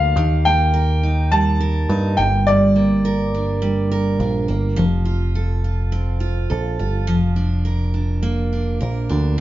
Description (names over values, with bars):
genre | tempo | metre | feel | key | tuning
acoustic pop | 104 BPM | 4/4 | straight | unclear | A4 = 440 Hz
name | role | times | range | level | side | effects
bright upright piano | melody | 0.0-4.2 s | D5 to A5 | -20 LUFS | left 1 dB | none
picked steel-string acoustic guitar | accompaniment | 0.0-9.4 s | G2 to Bb4 | -21 LUFS | right 2 dB | none
picked electric bass | bass | 0.0-9.4 s | F1 to G2 | -19 LUFS | equal | none
room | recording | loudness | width
moderate stone room reverb, RT60 1.1 s | band playing live in one room, nothing above 7.5 kHz, faint mains hum | -16 LUFS | side -14 dB against mid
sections
0.0-4.8 A section; 4.8-9.4 B section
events
none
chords
0.2 Eb; 2.2 Gm; 4.8 F; 7.1 Bb/F